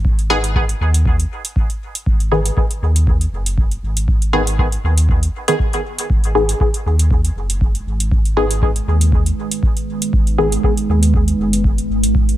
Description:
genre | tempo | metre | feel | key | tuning
dub techno | 119 BPM | 4/4 | swing 55% on 16ths | G# minor | A4 = 441 Hz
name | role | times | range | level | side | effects
warm sub bass | bass | 0.0-12.4 s | F#1 to D#2 | -17 LUFS | equal | sidechain pumping
electronic kick drum | drums | 0.0-12.3 s | none | -17 LUFS | equal | none
electronic hi-hat | drums | 0.2-12.4 s | none | -23 LUFS | right 2 dB | none
filtered dub chord stab | stabs | 0.3-10.5 s | D#3 to G#4 | -20 LUFS | left 1 dB | chorus, phaser, dub echo
deep dark ambient pad | sustained chords | 7.9-12.4 s | G#3 to B4 | -21 LUFS | right 2 dB | chorus, built-in reverb, vintage 12-bit sampler grit, sidechain pumping
room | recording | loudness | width
little or no reverb | none | -14 LUFS | side -14 dB against mid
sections
0.0-12.4 A section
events
none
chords
0.0 G#m

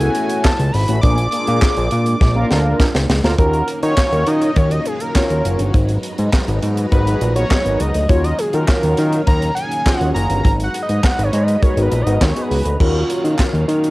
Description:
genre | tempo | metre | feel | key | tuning
early-eighties boogie funk | 102 BPM | 4/4 | straight | Eb minor from 3.4 s | A4 = 440 Hz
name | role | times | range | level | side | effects
fat analog lead | melody | 0.0-12.8 s | Ab4 to D6 | -22 LUFS | equal | phaser, cassette tape
mellow synth brass | accompaniment | 0.0-13.4 s | A3 to Db5 | -22 LUFS | equal | chorus, phaser, cassette tape
string machine, full ensemble | sustained chords | 0.0-13.9 s | Eb3 to Bb5 | -27 LUFS | equal | ensemble chorus, cassette tape
fat analog bass | bass | 0.0-13.9 s | Gb1 to Eb3 | -17 LUFS | equal | none
tight funk drum kit | drums | 0.0-13.9 s | crash cymbal, handclaps, hi-hat, kick drum, snare drum | -17 LUFS | equal | cassette tape
group handclap | percussion | 0.5-13.5 s | none | -31 LUFS | right 2 dB | none
room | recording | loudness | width
light reverb, studio reverb | home recording on cassette | -14 LUFS | side -20 dB against mid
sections
0.0-3.4 A section; 3.4-12.8 B section; 12.8-13.9 C section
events
drum fill 2.2-3.4; analog synth lead solo 3.4-12.8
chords
0.0 B9sus4; 1.0 Bb7; 3.4 Ebm9; 5.7 Abm9; 8.1 Ebm9; 10.4 Abm9; 12.8 Ebm9

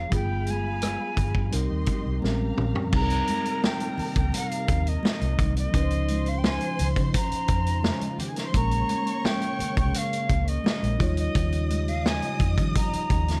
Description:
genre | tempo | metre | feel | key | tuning
lush 1970s-style soul | 86 BPM | 4/4 | straight | unclear | A4 = 436 Hz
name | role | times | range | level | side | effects
silver concert flute | melody | 0.0-13.4 s | Eb5 to Bb5 | -33 LUFS | equal | none
warm studio string section | second line | 0.0-13.4 s | Db4 to Eb6 | -40 LUFS | equal | none
mellow tine electric piano | accompaniment | 0.0-13.4 s | F3 to Db5 | -34 LUFS | equal | none
vintage muted fingered electric bass | bass | 0.0-13.4 s | G1 to Eb3 | -29 LUFS | equal | none
vintage drum kit | drums | 0.1-13.4 s | crash cymbal, hi-hat, kick drum, rim click, snare drum, toms | -30 LUFS | equal | none
congas | percussion | 0.1-13.3 s | none | -38 LUFS | equal | none
soft string machine | sustained chords | 2.9-13.4 s | C3 to C5 | -39 LUFS | equal | ensemble chorus
room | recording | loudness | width
little or no reverb | dark, warm production | -25 LUFS | mono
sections
0.0-2.9 A section; 2.9-13.4 B section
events
drum fill 2.2-2.9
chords
0.1 G7b9; 1.5 Cm7; 2.2 Bbm69; 2.9 Cm7; 5.7 Dbmaj9; 8.5 Bbm7; 11.0 Eb9

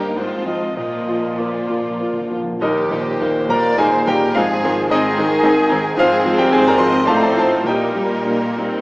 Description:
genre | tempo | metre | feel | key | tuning
classical, romantic movement for piano and orchestra | 95-114 BPM | 3/4 | rubato | Eb major | A4 = 442 Hz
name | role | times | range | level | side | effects
clear grand piano | melody | 0.0-8.8 s | Eb2 to C6 | -18 LUFS | equal | none
dark chamber violin section | melody | 0.0-8.8 s | C4 to G4 | -29 LUFS | equal | none
mellow cor anglais | second line | 0.0-8.8 s | Ab4 to Eb5 | -26 LUFS | right 1 dB | none
rich chamber violin section | second line | 0.0-8.8 s | Bb3 to Eb5 | -28 LUFS | equal | none
rich chamber viola section | accompaniment | 0.0-8.8 s | F3 to C4 | -25 LUFS | equal | none
warm French horn section | sustained chords | 0.0-8.8 s | Eb3 to F4 | -24 LUFS | equal | none
warm chamber cello section | bass | 0.0-8.8 s | Eb2 to Bb2 | -29 LUFS | equal | none
warm symphonic double bass section | bass | 0.0-8.8 s | G1 to Eb2 | -33 LUFS | right 1 dB | none
timpani | percussion | 0.8-2.6 s | Bb2 | -35 LUFS | equal | none
flute section | second line | 2.6-8.8 s | G4 to Eb5 | -24 LUFS | equal | none
room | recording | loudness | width
wet recital hall reverb, RT60 1.7 s | small speaker sound | -14 LUFS | side -24 dB against mid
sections
0.0-2.6 A section; 2.6-8.8 B section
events
timpani fill 0.8-2.6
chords
0.2 Fm/Ab; 0.8 Bb; 2.6 Eb; 4.4 Ab; 6.0 Fm/Ab; 7.1 F7/A; 7.7 Eb/Bb

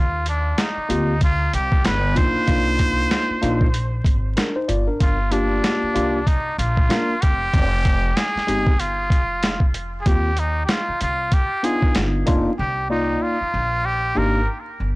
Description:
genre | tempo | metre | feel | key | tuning
hip hop, jazz-hop | 95 BPM | 4/4 | swing 60% on 16ths | unclear | A4 = 437 Hz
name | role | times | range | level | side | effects
trumpet with straight mute | melody | 0.0-14.5 s | D4 to C5 | -23 LUFS | equal | plate reverb, analog delay
upright bass | bass | 0.0-15.0 s | F1 to Eb2 | -24 LUFS | equal | tube saturation
boom bap sampler-style drum kit | drums | 0.3-12.4 s | hi-hat, kick drum, snare drum | -19 LUFS | equal | none
tine electric piano | accompaniment | 0.9-14.4 s | Ab3 to D5 | -23 LUFS | left 1 dB | none
room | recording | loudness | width
light reverb | blown-out, overdriven recording, vinyl crackle, overdrive | -18 LUFS | side -22 dB against mid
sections
0.0-15.0 A section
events
none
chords
0.0 Eb69; 1.8 G7b13; 2.5 Cm11; 5.0 Gm7; 7.5 Fmadd9; 10.1 Eb69; 12.0 G7b13; 12.6 Cm11

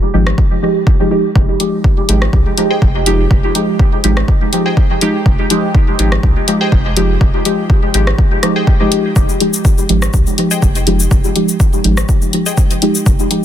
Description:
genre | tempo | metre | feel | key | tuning
dub techno | 123 BPM | 4/4 | swing 53% on 16ths | F minor | A4 = 440 Hz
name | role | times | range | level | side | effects
deep mellow chord stab | stabs | 0.1-13.4 s | F3 to G4 | -15 LUFS | equal | chorus, phaser, sidechain pumping, dub echo
soft dub sub bass | bass | 0.1-13.2 s | F1 to C2 | -15 LUFS | equal | sidechain pumping
deep house drum kit | drums | 0.3-13.4 s | hi-hat, rim click, shaker | -21 LUFS | left 2 dB | soft clipping on snare, dub echo
electronic kick drum | drums | 0.4-13.2 s | none | -12 LUFS | equal | none
wavetable chord stab | riff | 2.7-12.6 s | Ab4 to G5 | -25 LUFS | left 2 dB | sidechain pumping, dub echo
room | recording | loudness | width
digital ambience | dense, heavily limited modern master | -10 LUFS | side -11 dB against mid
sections
0.0-9.2 A section; 9.2-13.4 A section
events
none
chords
0.0 Fm9

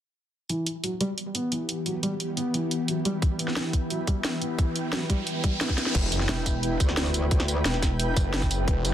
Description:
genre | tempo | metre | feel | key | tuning
dark technical drum and bass | 176 BPM | 4/4 | straight | E minor | A4 = 437 Hz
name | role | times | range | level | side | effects
swarming drone | sustained chords | 1.4-5.9 s | E3 to G4 | -34 LUFS | left 1 dB | built-in reverb, sidechain pumping
felt-muted upright piano | arpeggios | 0.5-5.8 s | E3 to B3 | -30 LUFS | equal | sidechain pumping, low-pass filter, tape echo
drum and bass drum kit | drums | 0.5-8.9 s | crash cymbal, hi-hat, snare drum, tambourine | -29 LUFS | equal | studio ambience
granular cloud pad | texture | 1.8-8.9 s | E4 to G5 | -33 LUFS | right 1 dB | built-in reverb, sidechain pumping
electronic kick drum | drums | 3.2-8.7 s | none | -24 LUFS | equal | studio ambience
riser and impact | sound effects | 4.5-7.3 s | none | -36 LUFS | right 1 dB | none
snarling distorted saw bass | bass | 5.9-8.9 s | E1 to F#1 | -27 LUFS | equal | overdrive, sidechain pumping
metallic wobble bass | bass | 6.3-8.2 s | E1 to D2 | -27 LUFS | equal | chorus
room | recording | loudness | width
light reverb | dense, heavily limited modern master | -24 LUFS | side -11 dB against mid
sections
0.5-5.9 A section; 5.9-8.9 B section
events
fade-in on ambient pad 0.5-5.9; riser 4.5-5.9; drum fill 5.7; drop 5.9-8.9; impact 5.9-7.3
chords
0.5 Em

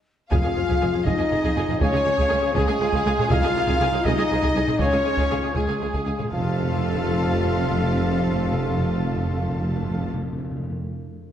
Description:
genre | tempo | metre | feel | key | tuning
cinematic, epic orchestral film score | 80 BPM (dotted quarters) | 6/8 | straight | F minor | A4 = 442 Hz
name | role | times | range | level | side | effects
warm symphonic violin section | melody | 0.3-10.1 s | Ab4 to F5 | -33 LUFS | left 2 dB | none
mellow hollow silver concert flute | second line | 0.3-10.1 s | Ab4 to F5 | -32 LUFS | equal | none
warm symphonic violin section | second line | 0.3-10.1 s | A4 to A5 | -35 LUFS | left 2 dB | none
warm chamber viola section | accompaniment | 0.3-10.1 s | F4 to A4 | -32 LUFS | right 1 dB | none
dark French horn section | sustained chords | 0.3-10.1 s | F3 to F4 | -27 LUFS | left 4 dB | none
mellow woodwind section | sustained chords | 0.3-10.1 s | Ab3 to Ab5 | -36 LUFS | equal | none
clear trumpet section | stabs | 0.3-10.1 s | Ab4 to F5 | -29 LUFS | right 2 dB | none
clear chamber double bass section | bass | 0.3-10.1 s | F1 to Db2 | -29 LUFS | right 3 dB | none
mellow tuba | bass | 0.3-10.1 s | F1 to Db2 | -30 LUFS | right 3 dB | none
rich symphonic cello section | bass | 0.3-10.1 s | C2 to F2 | -30 LUFS | right 2 dB | none
taiko ensemble | drums | 0.3-6.4 s | none | -26 LUFS | equal | none
timpani | percussion | 0.3-1.0, 3.3-4.0, 6.3-10.8 s | F2 to C3 | -29 LUFS | left 1 dB | none
room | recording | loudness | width
wet scoring stage reverb, RT60 1.9 s | none | -20 LUFS | side -10 dB against mid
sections
0.3-6.3 A section; 6.3-9.3 B section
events
break 0.0-0.3; drum fill 0.0-0.3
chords
0.3 Fm; 1.8 Db; 3.3 Ab/C; 4.8 Db; 6.3 F

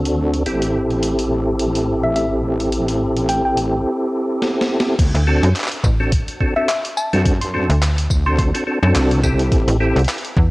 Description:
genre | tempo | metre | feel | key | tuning
glitch hop | 106 BPM | 4/4 | swing 56% on 16ths | unclear | A4 = 440 Hz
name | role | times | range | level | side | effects
percussive tonewheel organ | stabs | 0.0-10.0 s | C4 to A4 | -19 LUFS | equal | chorus vibrato, fast rotary speaker, sidechain pumping, low-pass filter, cassette tape, analog delay
wobble bass | bass | 0.0-9.7 s | A1 to F#2 | -21 LUFS | equal | chorus
boom bap sampler-style drum kit | drums | 0.1-10.3 s | crash cymbal, handclaps, hi-hat, snare drum, tambourine | -25 LUFS | equal | cassette tape
woody wave-folded pluck | melody | 2.0-8.5 s | E5 to C6 | -22 LUFS | left 1 dB | chorus, cassette tape
electronic kick drum | drums | 5.0-10.5 s | none | -17 LUFS | equal | cassette tape
slap-like FM bass | bass | 5.1-10.5 s | A1 to F#2 | -16 LUFS | equal | none
room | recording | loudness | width
light reverb | home recording on cassette | -15 LUFS | side -20 dB against mid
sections
0.0-5.0 A section; 5.0-10.5 B section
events
drum fill 4.4-5.0; drop 5.0-10.5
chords
0.5 Am7; 5.0 D7; 9.5 Am7

